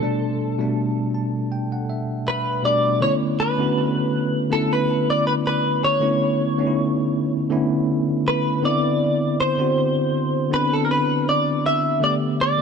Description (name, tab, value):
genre	R&B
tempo	80 BPM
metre	4/4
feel	swing 54% on 16ths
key	B minor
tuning	A4 = 440 Hz
part	direct-recorded clean electric guitar	melody	0.0-12.6 s	A4 to E5	-22 LUFS	equal	lush chorus, tape echo
part	bell-like tine electric piano	accompaniment	0.0-12.6 s	B2 to A5	-21 LUFS	left 1 dB	fast stereo tremolo
room	light reverb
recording	dark, warm production, nothing above 10.5 kHz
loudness	-18 LUFS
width	side -6 dB against mid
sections	0.0-3.0 A section; 3.0-12.6 B section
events	tine electric piano fill 0.8-3.0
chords	0.0 A9sus4; 3.0 Bm11; 8.6 Cmaj9; 12.0 A9sus4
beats	| 0.02 0.77 1.52 2.27 | 3.02 3.77 4.52 5.27 | 6.02 6.77 7.52 8.27 | 9.02 9.77 10.52 11.27 | 12.02